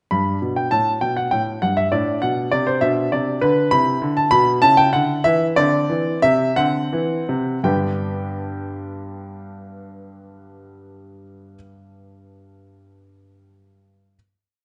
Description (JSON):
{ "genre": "classical-period piano sonatina", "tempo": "54-68 BPM (dotted quarters)", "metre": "6/8", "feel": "straight", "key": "G major", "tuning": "A4 = 439 Hz", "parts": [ { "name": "clear grand piano", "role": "solo", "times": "0.1-14.2 s", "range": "G2 to B5", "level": "-19 LUFS", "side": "equal", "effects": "none" } ], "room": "wet recital hall reverb, RT60 1.4 s", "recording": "nothing above 10.9 kHz", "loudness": "-19 LUFS", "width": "mono", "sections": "0.1-7.7 A section; 7.7-11.9 final chord", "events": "slowing down 2.8-7.7", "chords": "0.1 G; 1.9 D5/A; 2.8 Bmadd11; 4.6 C#madd11; 5.6 Cadd9; 7.7 G" }